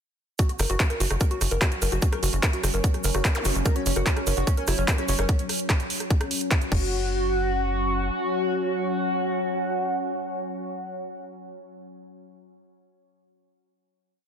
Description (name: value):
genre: psychedelic trance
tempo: 147 BPM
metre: 4/4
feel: straight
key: F# major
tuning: A4 = 440 Hz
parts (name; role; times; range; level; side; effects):
- evolving wavetable pad; sustained chords; 0.8-11.0 s; F#3 to C#4; -31 LUFS; equal; phaser, built-in reverb, sidechain pumping
- woody wave-folded pluck; riff; 0.4-7.1 s; F#4 to A#4; -32 LUFS; moving between left 7 dB and right 3 dB; chorus, auto-pan, sidechain pumping, dub echo
- drum and bass drum kit; drums; 0.4-6.8 s; crash cymbal, handclaps, hi-hat, rim click; -28 LUFS; right 1 dB; overdrive, studio reverb
- electronic kick drum; drums; 0.4-6.8 s; none; -22 LUFS; equal; overdrive, studio reverb
- egg shaker; percussion; 0.4-5.3 s; none; -35 LUFS; right 5 dB; none
- tight sequencer bass; bass; 0.6-8.1 s; F#1; -26 LUFS; equal; none
- zap; sound effects; 3.4-3.5 s; none; -34 LUFS; equal; none
- overdriven synth lead; melody; 3.7-10.9 s; C#4 to A#4; -28 LUFS; equal; distortion, chorus, phaser, sidechain pumping, digital delay
room: little or no reverb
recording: dense, heavily limited modern master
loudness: -22 LUFS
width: side -7 dB against mid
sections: 0.4-6.9 drop; 6.9-10.2 final hit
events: drop 0.4-6.9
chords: 0.4 F#5